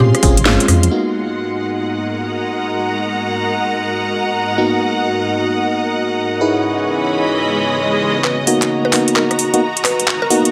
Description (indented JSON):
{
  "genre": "UK garage, two-step garage",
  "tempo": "131 BPM",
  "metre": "4/4",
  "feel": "swing 65% on 16ths",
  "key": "G# minor",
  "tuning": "A4 = 438 Hz",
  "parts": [
    { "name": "mallet-like synth pluck", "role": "melody", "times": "0.0-0.8, 8.2-10.4 s", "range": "G4 to B4", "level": "-25 LUFS", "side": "equal", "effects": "chorus, phaser, dub echo" },
    { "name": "ethereal airy pad", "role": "sustained chords", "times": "0.0-10.5 s", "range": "G#2 to B#5", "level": "-26 LUFS", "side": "equal", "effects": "ensemble chorus, built-in reverb, sidechain pumping" },
    { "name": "FM electric piano", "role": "stabs", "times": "0.0-10.5 s", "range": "G#3 to B4", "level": "-21 LUFS", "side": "equal", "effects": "chorus, low-pass filter, dub echo" },
    { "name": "deep soft wobble bass", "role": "bass", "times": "0.0-0.9, 8.2-10.5 s", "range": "E#1 to A#2", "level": "-19 LUFS", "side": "equal", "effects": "chorus, sidechain pumping, high-pass filter" },
    { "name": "rich studio string section", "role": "texture", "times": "0.0-10.5 s", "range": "E3 to B#5", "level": "-23 LUFS", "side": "equal", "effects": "sidechain pumping" },
    { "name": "garage drum kit", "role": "drums", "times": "0.1-0.9, 8.2-10.5 s", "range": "handclaps, hi-hat, rim click, snare drum", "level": "-19 LUFS", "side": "equal", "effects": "small room reverb" },
    { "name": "swell", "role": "sound effects", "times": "7.5-8.2 s", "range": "none", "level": "-24 LUFS", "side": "equal", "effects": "none" }
  ],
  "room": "moderate digital room reverb, RT60 1.1 s",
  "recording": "none",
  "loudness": "-17 LUFS",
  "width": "mono",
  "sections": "0.9-8.2 A section; 8.2-10.5 B section",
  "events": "band accent 0.5; swell 7.5-8.2; build-up 8.2-10.5; drum fill 8.2-10.5; filter sweep on FM electric piano 8.2-10.5",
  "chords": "0.0 A#m9; 0.9 G#m9; 6.4 C#m9; 8.2 G#m9"
}